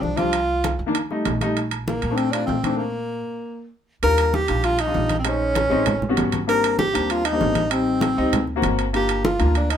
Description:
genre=Afro-Cuban jazz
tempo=195 BPM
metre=4/4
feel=straight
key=Bb major, Eb major from 4.0 s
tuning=A4 = 439 Hz
part: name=breathy tenor saxophone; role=melody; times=0.0-9.8 s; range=Bb3 to Bb4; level=-22 LUFS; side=equal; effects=none
part: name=warm baby grand piano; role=accompaniment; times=0.0-9.7 s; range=Eb3 to C5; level=-24 LUFS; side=left 3 dB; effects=none
part: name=upright bass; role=bass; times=0.0-9.8 s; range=G1 to Bb2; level=-26 LUFS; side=right 1 dB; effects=none
part: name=congas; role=percussion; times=0.0-9.8 s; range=none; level=-26 LUFS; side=left 1 dB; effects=none
part: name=timbales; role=percussion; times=0.2-9.8 s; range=none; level=-28 LUFS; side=right 8 dB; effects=none
room=moderate small room reverb, RT60 0.6 s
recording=band playing live in one room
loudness=-19 LUFS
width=side -9 dB against mid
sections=0.0-4.0 A section; 4.0-9.8 B section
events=stop 2.8-4.0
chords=0.3 Cm7; 0.9 F7; 1.6 Bbmaj7; 4.0 Ebmaj9; 5.3 Bbm11; 5.9 A13; 6.5 Abmaj9#11; 7.7 Am7b5; 8.3 Daug7; 8.9 Gm7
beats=0.02 | 0.33 0.64 0.95 1.25 | 1.56 1.87 2.18 2.49 | 2.79 3.10 3.41 3.72 | 4.03 4.33 4.64 4.95 | 5.26 5.56 5.87 6.18 | 6.49 6.79 7.10 7.41 | 7.72 8.02 8.33 8.64 | 8.95 9.25 9.56

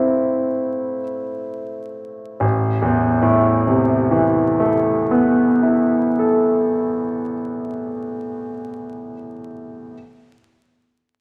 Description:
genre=classical, impressionist solo piano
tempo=41-47 BPM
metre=4/4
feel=rubato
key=A minor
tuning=A4 = 437 Hz
part: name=clear concert grand piano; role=solo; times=0.0-9.9 s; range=A1 to A5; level=-20 LUFS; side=equal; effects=none
room=wet recital hall reverb, RT60 1.5 s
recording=vinyl crackle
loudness=-19 LUFS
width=mono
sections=0.0-2.4 A section; 2.4-7.7 B section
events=slowing down 0.0-2.4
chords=0.0 Am; 2.4 Amadd9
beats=1.03 | 2.42 3.69 4.99 6.34

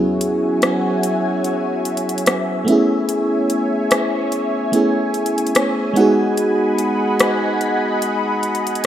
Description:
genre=contemporary R&B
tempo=73 BPM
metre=4/4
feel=swing 58% on 16ths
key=unclear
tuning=A4 = 441 Hz
part: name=FM electric piano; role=accompaniment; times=0.0-8.9 s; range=F#3 to F#5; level=-18 LUFS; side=right 1 dB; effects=chorus
part: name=lush unison pad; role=sustained chords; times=0.0-8.9 s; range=F#4 to B5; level=-22 LUFS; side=left 1 dB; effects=chorus, phaser
part: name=trap drum kit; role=drums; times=0.2-8.9 s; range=hi-hat, rim click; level=-21 LUFS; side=left 1 dB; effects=overdrive
room=moderate plate reverb, RT60 3.6 s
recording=rough home demo mix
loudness=-16 LUFS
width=side -10 dB against mid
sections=0.0-8.9 A section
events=break 0.0-8.9; FM electric piano fill 5.1-6.4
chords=0.0 E69; 2.7 Amaj7; 6.0 G#m7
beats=0.62 1.44 2.27 | 3.09 3.91 4.73 5.55 | 6.37 7.20 8.02 8.84

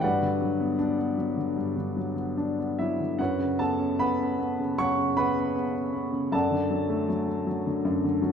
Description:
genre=classical, lyrical solo piano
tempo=73-81 BPM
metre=4/4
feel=rubato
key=unclear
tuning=A4 = 440 Hz
part: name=warm grand piano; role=solo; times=0.0-8.3 s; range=F#2 to C#6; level=-24 LUFS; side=left 1 dB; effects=none
room=wet scoring stage reverb, RT60 1.9 s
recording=minimal, uncompressed stereo recording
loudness=-24 LUFS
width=side -7 dB against mid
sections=0.0-8.3 A section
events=none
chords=0.0 Gmaj7; 3.2 F#sus4; 6.3 D/F#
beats=| 0.04 0.79 1.57 2.38 | 3.19 4.00 4.79 5.56 | 6.33 7.10 7.86

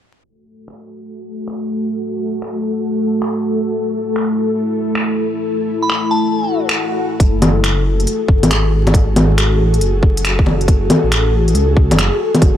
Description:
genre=future garage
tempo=138 BPM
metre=4/4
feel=swing 66% on 16ths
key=F# minor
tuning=A4 = 440 Hz
part: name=ethereal airy pad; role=sustained chords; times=1.1-12.6 s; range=A3 to A4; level=-18 LUFS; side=left 1 dB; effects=ensemble chorus, built-in reverb, sidechain pumping
part: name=organic electronic drum kit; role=drums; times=0.7-12.5 s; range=bongos, finger snaps, hi-hat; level=-17 LUFS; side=equal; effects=overdrive
part: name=glassy synth bell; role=melody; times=5.8-6.5 s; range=A5 to B5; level=-21 LUFS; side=left 1 dB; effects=chorus, tape echo
part: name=swell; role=sound effects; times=6.5-7.2 s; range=none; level=-25 LUFS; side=equal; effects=none
part: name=swelling detuned saw bass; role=bass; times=7.2-12.6 s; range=F#1 to C#2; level=-15 LUFS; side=equal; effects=sidechain pumping
part: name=electronic kick drum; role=drums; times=7.2-12.5 s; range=none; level=-11 LUFS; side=equal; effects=none
room=digital ambience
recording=dry, gritty hardware recording, transformer saturation, vinyl crackle, low-pass filter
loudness=-13 LUFS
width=side -10 dB against mid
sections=0.2-7.2 A section; 7.2-12.6 B section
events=filter sweep 0.2-7.2; swell 6.5-7.2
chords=0.2 F#m; 7.2 F#madd9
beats=| 0.24 0.68 1.11 1.55 | 1.98 2.42 2.85 3.29 | 3.72 4.16 4.59 5.03 | 5.46 5.90 6.33 6.77 | 7.20 7.63 8.07 8.51 | 8.94 9.37 9.81 10.24 | 10.68 11.11 11.55 11.98 | 12.42

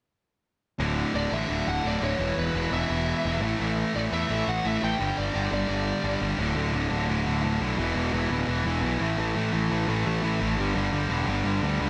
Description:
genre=punk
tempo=172 BPM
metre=4/4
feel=straight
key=unclear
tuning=A4 = 439 Hz
part: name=distorted electric guitar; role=riff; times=0.8-11.9 s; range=D2 to A3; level=-33 LUFS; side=equal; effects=distortion
part: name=tight distorted guitar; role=riff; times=0.8-11.9 s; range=D2 to A3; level=-31 LUFS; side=equal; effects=distortion
part: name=fuzz picked electric bass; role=bass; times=0.8-11.9 s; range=D1 to E2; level=-31 LUFS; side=equal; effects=overdrive
part: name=smooth overdriven lead guitar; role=melody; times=1.2-6.2 s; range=B4 to G5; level=-34 LUFS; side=equal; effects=digital delay
room=light reverb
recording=none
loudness=-27 LUFS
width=mono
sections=0.8-6.4 A section; 6.4-11.9 B section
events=none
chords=0.8 D5; 2.2 E5; 3.4 A5; 5.0 G5; 6.4 D5; 7.8 E5; 9.0 A5; 10.6 G5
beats=| 0.80 1.15 1.50 1.85 | 2.20 2.55 2.90 3.25 | 3.60 3.95 4.30 4.64 | 5.00 5.34 5.69 6.04 | 6.39 6.74 7.09 7.44 | 7.79 8.14 8.49 8.84 | 9.19 9.53 9.88 10.23 | 10.58 10.93 11.28 11.63

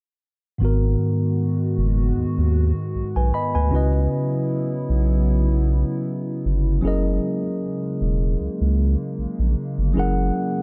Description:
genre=R&B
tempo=77 BPM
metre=4/4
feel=swing 54% on 16ths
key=G# minor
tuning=A4 = 439 Hz
part: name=mellow tine electric piano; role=accompaniment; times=0.6-10.6 s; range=G#2 to B5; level=-26 LUFS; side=equal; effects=none
part: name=hollow soft pad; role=sustained chords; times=0.6-10.6 s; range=C#3 to F#4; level=-31 LUFS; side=equal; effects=chorus
part: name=saturated sub bass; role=bass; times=0.6-10.3 s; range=E1 to D#2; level=-22 LUFS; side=equal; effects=none
room=light reverb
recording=dark, warm production, nothing above 7.5 kHz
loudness=-22 LUFS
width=mono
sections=0.6-10.6 A section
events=none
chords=0.6 G#m7; 3.7 C#m11; 6.8 F#13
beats=| 0.61 1.39 2.17 2.95 | 3.73 4.51 5.29 6.06 | 6.84 7.62 8.40 9.18 | 9.96

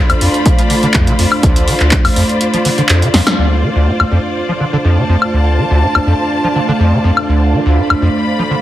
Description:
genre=acid house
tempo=123 BPM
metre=4/4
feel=straight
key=D dorian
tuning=A4 = 440 Hz
part: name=warm analog pad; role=sustained chords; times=0.0-8.6 s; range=A3 to F5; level=-18 LUFS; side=right 1 dB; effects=chorus, sidechain pumping
part: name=clear studio string section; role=texture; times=0.0-8.6 s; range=F4 to B5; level=-18 LUFS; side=left 1 dB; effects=sidechain pumping
part: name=acid bass, square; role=riff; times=0.1-8.5 s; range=D2 to F3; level=-14 LUFS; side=equal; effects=overdrive, ensemble chorus
part: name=punchy analog drum machine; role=drums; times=0.1-8.0 s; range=handclaps, hi-hat, snare drum, woodblock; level=-15 LUFS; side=left 1 dB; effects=none
part: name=electronic kick drum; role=drums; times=0.5-2.0 s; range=none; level=-13 LUFS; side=equal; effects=none
room=moderate plate reverb, RT60 1.1 s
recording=heavily compressed radio sound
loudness=-10 LUFS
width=side -13 dB against mid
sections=0.0-3.4 A section; 3.4-8.6 B section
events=kick drops out 2.4-3.4; drum fill 3.1; band accent 3.3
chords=0.0 Dm7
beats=0.46 0.94 | 1.43 1.92 2.41 2.90 | 3.38 3.87 4.36 4.85 | 5.33 5.82 6.31 6.80 | 7.29 7.77 8.26

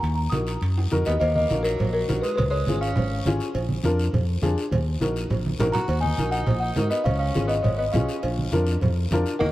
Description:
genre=latin, cumbia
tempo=205 BPM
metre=4/4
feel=straight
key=Eb minor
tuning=A4 = 440 Hz
part: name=folk marimba with soft mallets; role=melody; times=0.0-3.4, 5.7-9.5 s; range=Bb4 to Eb6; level=-27 LUFS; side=left 1 dB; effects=tape echo
part: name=fingered electric bass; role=bass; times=0.0-9.5 s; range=Ab1 to Ab2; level=-25 LUFS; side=equal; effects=none
part: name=congas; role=percussion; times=0.0-9.5 s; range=none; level=-27 LUFS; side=right 2 dB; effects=none
part: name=guiro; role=percussion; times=0.0-9.5 s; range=none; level=-40 LUFS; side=left 5 dB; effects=none
part: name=timbales and cowbell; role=percussion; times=0.0-9.5 s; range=none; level=-35 LUFS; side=right 3 dB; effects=none
part: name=dark upright piano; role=accompaniment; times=0.3-9.5 s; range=Bb3 to Bb4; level=-28 LUFS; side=left 2 dB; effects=none
part: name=bright tenor saxophone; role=second line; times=1.1-3.4, 5.7-9.5 s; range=Gb3 to Gb4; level=-33 LUFS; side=right 2 dB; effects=none
room=moderate plate reverb, RT60 3.3 s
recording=heard from further back in the room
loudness=-21 LUFS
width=side -16 dB against mid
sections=0.0-1.2 A section; 1.2-9.5 B section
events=drum fill 0.8-1.2, 5.5-5.9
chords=0.0 Ebm; 2.4 Db; 3.6 Bb7; 4.7 Ebm; 7.1 Db; 8.2 Bb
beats=| 0.03 0.33 0.62 0.92 | 1.21 1.50 1.79 2.09 | 2.38 2.67 2.97 3.26 | 3.55 3.84 4.14 4.43 | 4.72 5.01 5.31 5.60 | 5.89 6.18 6.48 6.77 | 7.06 7.36 7.65 7.94 | 8.24 8.53 8.82 9.12 | 9.41

